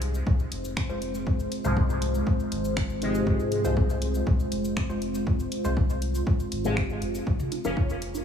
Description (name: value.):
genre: dub techno.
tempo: 120 BPM.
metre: 4/4.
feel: straight.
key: unclear.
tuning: A4 = 440 Hz.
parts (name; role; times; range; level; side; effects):
deep dark ambient pad; sustained chords; 0.0-8.2 s; Ab3 to Db5; -31 LUFS; equal; chorus, built-in reverb, sidechain pumping.
soft dub sub bass; bass; 0.0-8.2 s; F1 to C2; -31 LUFS; left 1 dB; sidechain pumping.
deep house drum kit; drums; 0.0-8.2 s; finger snaps, hi-hat, shaker; -38 LUFS; left 1 dB; small room ambience.
electronic kick drum; drums; 0.3-7.9 s; none; -25 LUFS; equal; small room ambience.
warbly dusty pluck; riff; 0.9-7.8 s; Ab3 to F5; -38 LUFS; equal; chorus, sidechain pumping, dub echo.
resonant sweep polysynth; stabs; 1.6-7.8 s; Ab2 to Db4; -30 LUFS; left 1 dB; chorus, phaser, sidechain pumping, dub echo.
electronic toms and bongos; percussion; 7.4-8.2 s; none; -35 LUFS; right 3 dB; sidechain pumping on toms, small room ambience, sidechain pumping on perc, dub echo.
room: light reverb.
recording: studio ambience.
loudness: -24 LUFS.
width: side -8 dB against mid.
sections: 0.0-8.2 A section.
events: filter sweep on analog polysynth 0.0-8.2.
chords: 0.0 Fm; 7.3 N.C..